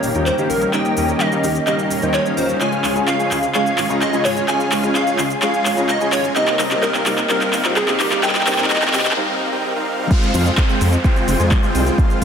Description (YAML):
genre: EDM, festival progressive house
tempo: 128 BPM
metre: 4/4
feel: straight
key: F minor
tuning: A4 = 440 Hz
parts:
  - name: plucky unison lead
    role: melody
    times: 0.0-9.2 s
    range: G4 to Ab5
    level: -21 LUFS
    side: equal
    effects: phaser, cassette tape, digital delay
  - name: muted studio string section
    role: sustained chords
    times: 0.0-12.2 s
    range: C3 to Ab4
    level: -27 LUFS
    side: equal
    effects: sidechain pumping
  - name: dense compressed supersaw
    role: riff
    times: 0.0-12.2 s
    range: G3 to Bb5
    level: -21 LUFS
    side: equal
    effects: sidechain pumping, low-pass filter, digital delay
  - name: wide detuned saw bass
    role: bass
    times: 0.0-12.2 s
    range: Eb1 to F2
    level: -23 LUFS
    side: equal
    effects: chorus, tube saturation, sidechain pumping
  - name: big-room dance drum kit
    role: drums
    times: 0.0-12.2 s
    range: crash cymbal, handclaps, hi-hat, ride cymbal, shaker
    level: -22 LUFS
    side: equal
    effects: none
  - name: warm concert grand piano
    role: accompaniment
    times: 0.1-9.1 s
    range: C3 to C5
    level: -26 LUFS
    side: left 4 dB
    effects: sidechain pumping, digital delay
  - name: riser and downlifter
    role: sound effects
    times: 5.7-12.2 s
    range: none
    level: -29 LUFS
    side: equal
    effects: none
  - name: electronic kick drum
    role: drums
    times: 10.1-12.1 s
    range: none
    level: -16 LUFS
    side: equal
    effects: none
room: moderate huge ambient reverb, RT60 7.1 s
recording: high-pass filter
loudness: -15 LUFS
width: side -7 dB against mid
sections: 0.0-10.1 A section; 10.1-12.2 B section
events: build-up 0.0-10.1; drum fill 0.0-9.2; filter sweep 0.0-10.1; break 9.2-10.1; drop 10.1-12.2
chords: 0.0 Eb7; 2.6 Db; 6.4 Cm7; 10.1 Fm